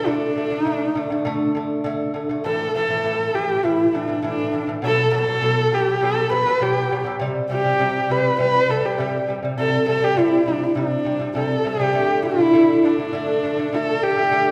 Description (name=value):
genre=mongolian traditional, Mongolian folk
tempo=101 BPM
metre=4/4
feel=straight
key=D zhi mode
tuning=A4 = 444 Hz
part: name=warm horsehead fiddle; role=melody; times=0.0-14.5 s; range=D4 to B4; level=-21 LUFS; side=equal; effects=none
part: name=lute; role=arpeggios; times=0.0-14.5 s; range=A2 to A3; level=-26 LUFS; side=equal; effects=none
room=wet recital hall reverb, RT60 1.6 s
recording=recorded in a church or concert hall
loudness=-20 LUFS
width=mono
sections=0.0-2.5 A section; 2.5-12.0 B section; 12.0-14.5 C section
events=none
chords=0.0 D5; 2.5 A5; 4.8 B5; 7.2 C5; 12.0 D5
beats=| 0.07 0.67 1.26 1.86 | 2.46 3.05 3.65 4.24 | 4.83 5.43 6.02 6.62 | 7.21 7.81 8.40 8.99 | 9.59 10.18 10.78 11.37 | 11.96 12.55 13.14 13.73 | 14.32